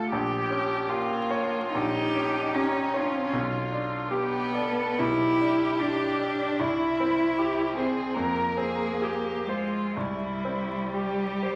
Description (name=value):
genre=classical, slow romantic movement for piano trio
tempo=73 BPM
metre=4/4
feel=uneven beats, rubato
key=unclear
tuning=A4 = 441 Hz
part: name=rich violin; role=melody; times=0.0-11.6 s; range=Eb4 to Bb4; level=-33 LUFS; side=equal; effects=none
part: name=warm cello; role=second line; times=0.0-11.6 s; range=G3 to E4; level=-30 LUFS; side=equal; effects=none
part: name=bright concert grand piano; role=accompaniment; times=0.0-11.6 s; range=Bb1 to D5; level=-33 LUFS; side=equal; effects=none
room=wet scoring stage reverb, RT60 1.5 s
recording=vinyl crackle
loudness=-27 LUFS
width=mono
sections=0.0-11.6 A section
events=none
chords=0.1 Gm7b5/Bb; 3.3 G7/B; 6.6 C; 8.2 Fm; 10.0 C5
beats=| 0.12 0.88 1.75 2.54 | 3.33 4.11 4.99 5.80 | 6.60 7.39 8.16 9.02 | 9.96 10.93